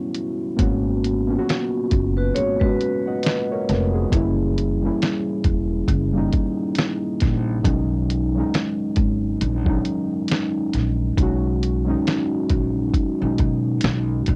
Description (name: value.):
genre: lo-fi hip hop.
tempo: 68 BPM.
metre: 4/4.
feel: swing 59% on 16ths.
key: B major.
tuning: A4 = 440 Hz.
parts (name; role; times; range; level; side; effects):
muted felt-like synth keys; accompaniment; 0.0-14.4 s; F#3 to F#5; -25 LUFS; equal; chorus, cassette tape, low-pass filter.
lo-fi sampler-style drum kit; drums; 0.1-14.4 s; hi-hat, kick drum, snare drum; -24 LUFS; equal; cassette tape.
upright bass; bass; 0.6-14.4 s; E1 to B2; -25 LUFS; equal; transformer saturation.
vibraphone with soft mallets; second line; 2.2-3.9 s; F#4 to C#5; -28 LUFS; equal; low-pass filter, cassette tape, tape echo.
room: light reverb.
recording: home recording on cassette.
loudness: -22 LUFS.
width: mono.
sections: 0.0-14.4 A section.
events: break 0.0-0.6.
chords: 0.0 Gmaj7#11; 0.6 G#m11; 4.1 F#7b9; 7.6 B69.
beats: | 0.59 1.47 2.35 3.24 | 4.12 5.00 5.88 6.77 | 7.65 8.53 9.41 10.30 | 11.18 12.06 12.94 13.82.